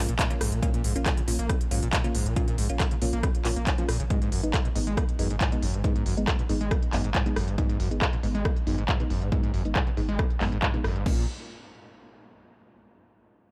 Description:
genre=driving peak-time techno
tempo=138 BPM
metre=4/4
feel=straight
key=unclear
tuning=A4 = 441 Hz
part: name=screaming distorted acid line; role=riff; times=0.0-11.3 s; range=Bb1 to Db4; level=-35 LUFS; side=equal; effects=distortion, lush chorus, sidechain pumping, tape echo
part: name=wavetable chord stab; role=stabs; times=0.0-11.2 s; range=Ab3 to F4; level=-36 LUFS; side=equal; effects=sidechain pumping, tape echo
part: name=warm sub bass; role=bass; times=0.0-11.3 s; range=Ab1 to Bb1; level=-32 LUFS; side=equal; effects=tube saturation, sidechain pumping, low-pass filter
part: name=techno drum kit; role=drums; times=0.1-11.2 s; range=crash cymbal, handclaps, hi-hat, rim click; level=-34 LUFS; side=equal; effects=overdrive, low-pass filter on hats, studio reverb, low-pass filter on cymbals, low-pass filter on snare
part: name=electronic kick drum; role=drums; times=0.2-11.2 s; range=none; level=-29 LUFS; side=equal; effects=studio reverb
room=little or no reverb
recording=none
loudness=-26 LUFS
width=mono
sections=0.0-11.1 A section; 11.1-12.8 B section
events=filter sweep on synth stab 0.0-11.1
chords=0.0 Bbm; 4.1 Abm; 11.1 N.C.

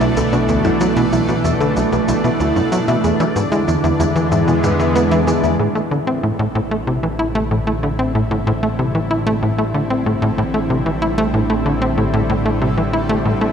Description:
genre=ambient, sequencer-driven space music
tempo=94 BPM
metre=4/4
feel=straight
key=A minor from 5.6 s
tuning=A4 = 440 Hz
part: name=lush unison pad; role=sustained chords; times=0.0-13.5 s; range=A2 to F#4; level=-19 LUFS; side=equal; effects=chorus
part: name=soft round pluck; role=arpeggios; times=0.0-5.6 s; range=B3 to E5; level=-23 LUFS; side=right 1 dB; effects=chorus, auto-pan, analog delay
part: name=tight sequencer bass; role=riff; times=0.0-13.5 s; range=B1 to E4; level=-18 LUFS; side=equal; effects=analog delay
part: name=analog drone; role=bass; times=0.0-13.5 s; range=A1 to E2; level=-26 LUFS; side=equal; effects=chorus
part: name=shaker and percussion blips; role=percussion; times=0.0-5.6 s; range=none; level=-35 LUFS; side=equal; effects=analog delay
part: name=bubbling stepped-filter texture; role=texture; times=0.0-13.5 s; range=A3 to D5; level=-31 LUFS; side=left 1 dB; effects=chorus, built-in reverb
room=wet cathedral reverb, RT60 4.9 s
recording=dreamy mix soaked in reverb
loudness=-15 LUFS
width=side -7 dB against mid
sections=0.0-5.6 A section; 5.6-13.5 B section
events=fade-in on analog synth pad 5.6-13.5; fade-in on synth texture 5.6-13.5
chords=0.0 Bm7; 3.0 E7; 5.6 Am7

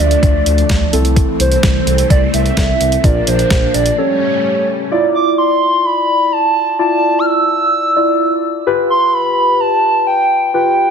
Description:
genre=synth-pop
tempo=128 BPM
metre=4/4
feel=straight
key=D dorian from 4.9 s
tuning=A4 = 440 Hz
part: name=hollow clarinet-like synth lead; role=melody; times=0.0-10.9 s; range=C5 to F6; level=-14 LUFS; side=right 1 dB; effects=chorus, ping-pong delay
part: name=muted felt-like synth keys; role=accompaniment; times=0.0-10.9 s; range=C4 to D5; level=-17 LUFS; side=left 1 dB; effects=chorus, phaser
part: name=string machine, cellos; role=sustained chords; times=0.0-4.9 s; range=E3 to D4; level=-20 LUFS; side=left 1 dB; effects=phaser, ensemble chorus
part: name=smooth synth bass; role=bass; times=0.0-3.9 s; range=Bb1 to D2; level=-16 LUFS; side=equal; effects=none
part: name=clean 12-bit digital drum machine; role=drums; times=0.0-4.0 s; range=hi-hat, kick drum, snare drum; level=-15 LUFS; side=equal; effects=overdrive
room=moderate recital hall reverb, RT60 1.4 s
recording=dense, heavily limited modern master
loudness=-11 LUFS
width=side -6 dB against mid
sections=0.0-4.9 A section; 4.9-10.9 B section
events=break 4.0-4.9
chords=0.0 Dm; 0.9 Am/C; 3.0 Bb; 4.0 A7; 4.9 Dmadd9; 8.7 G7

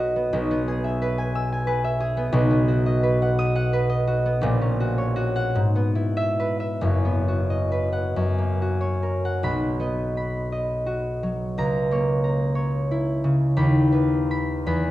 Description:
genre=classical, solo harp piece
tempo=44-62 BPM (dotted quarters)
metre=6/8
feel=rubato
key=B major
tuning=A4 = 440 Hz
part: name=concert harp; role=solo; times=0.0-14.9 s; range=F#1 to E6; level=-21 LUFS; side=equal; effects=none
room=moderate recital hall reverb, RT60 1.3 s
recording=dark, warm production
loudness=-21 LUFS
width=side -15 dB against mid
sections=0.0-9.4 A section; 9.4-14.9 B section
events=none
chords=0.3 E/B; 2.3 B; 4.4 F#/A#; 5.6 E/G#; 6.8 B/F#; 8.2 F#; 9.4 B; 11.6 A#dim/C#; 13.6 B/D#

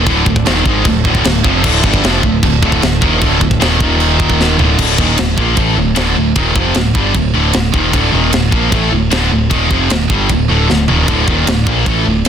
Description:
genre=heavy metal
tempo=153 BPM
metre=4/4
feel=straight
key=D minor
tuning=A4 = 441 Hz
part: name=sweeping resonant pad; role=sustained chords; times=0.0-4.8, 11.1-12.3 s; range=Eb3 to E5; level=-27 LUFS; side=right 2 dB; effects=none
part: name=heavy high-gain guitar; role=riff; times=0.0-12.3 s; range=D2 to Bb3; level=-16 LUFS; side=right 12 dB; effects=distortion
part: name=high-gain distorted guitar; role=riff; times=0.0-12.3 s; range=D2 to Bb3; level=-16 LUFS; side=left 12 dB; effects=distortion
part: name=overdriven picked electric bass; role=bass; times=0.0-12.3 s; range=D1 to Bb1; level=-16 LUFS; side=equal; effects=none
part: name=tight metal drum kit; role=drums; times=0.1-12.3 s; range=china cymbal, crash cymbal, kick drum, ride cymbal, snare drum, toms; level=-16 LUFS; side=equal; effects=soft clipping on kick
room=small room ambience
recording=dense, heavily limited modern master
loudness=-10 LUFS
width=side -8 dB against mid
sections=0.0-4.8 A section; 4.8-12.3 B section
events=drum fill 4.4-4.8, 10.7-11.1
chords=0.0 Dm; 3.8 Eb5; 4.6 Dm

